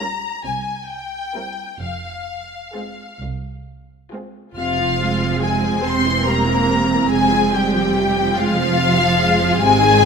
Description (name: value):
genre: classical, slow romantic movement for string orchestra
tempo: 42-49 BPM (dotted quarters)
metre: 6/8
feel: rubato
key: F minor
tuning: A4 = 441 Hz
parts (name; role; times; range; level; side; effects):
- clear symphonic violin section; melody; 0.0-10.1 s; F5 to C6; -20 LUFS; left 4 dB; none
- warm symphonic violin section; second line; 0.0-10.1 s; E4 to C5; -23 LUFS; left 3 dB; none
- rich symphonic viola section; accompaniment; 0.0-10.1 s; C3 to Db4; -22 LUFS; right 4 dB; none
- warm symphonic cello section; bass; 0.0-10.1 s; C2 to C4; -23 LUFS; right 4 dB; none
- warm symphonic double bass section; bass; 0.0-10.1 s; E1 to C2; -24 LUFS; right 3 dB; none
room: moderate concert hall reverb, RT60 1.8 s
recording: none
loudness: -16 LUFS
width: side -6 dB against mid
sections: 0.0-4.6 A section; 4.6-10.1 B section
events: none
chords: 0.5 C7; 1.8 Fm; 5.8 C7/E; 7.1 Fm